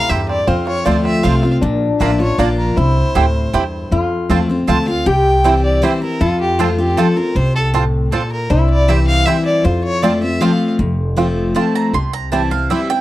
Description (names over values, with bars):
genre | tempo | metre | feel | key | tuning
bluegrass | 157 BPM | 3/4 | straight | F major | A4 = 440 Hz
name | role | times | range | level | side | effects
rich fiddle | melody | 0.0-10.7 s | F4 to A5 | -20 LUFS | equal | none
lap resonator guitar | second line | 0.0-10.6 s | D4 to G4 | -22 LUFS | left 3 dB | none
picked steel-string acoustic guitar | accompaniment | 0.0-13.0 s | F2 to F4 | -18 LUFS | left 2 dB | none
bluegrass banjo | arpeggios | 0.0-12.8 s | Bb3 to Bb4 | -21 LUFS | right 5 dB | none
upright bass | bass | 0.0-12.7 s | F1 to F2 | -17 LUFS | equal | none
mandolin | stabs | 0.1-13.0 s | Bb3 to C6 | -22 LUFS | right 7 dB | none
room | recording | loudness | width
small room ambience | dry, close 1970s-style studio recording | -13 LUFS | side -15 dB against mid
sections
0.0-1.6 A section; 1.6-10.8 A section; 10.8-13.0 B section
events
mandolin solo 10.8-13.0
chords
0.5 F; 1.6 Bb; 2.8 C; 3.9 F; 5.1 C; 6.2 F; 8.5 C; 9.6 F; 11.9 C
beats
0.10 | 0.48 0.86 1.24 | 1.63 2.01 2.39 | 2.77 3.15 3.54 | 3.92 4.30 4.68 | 5.06 5.45 5.83 | 6.21 6.59 6.97 | 7.36 7.74 8.12 | 8.50 8.88 9.27 | 9.65 10.03 10.41 | 10.80 11.18 11.56 | 11.94 12.32 12.71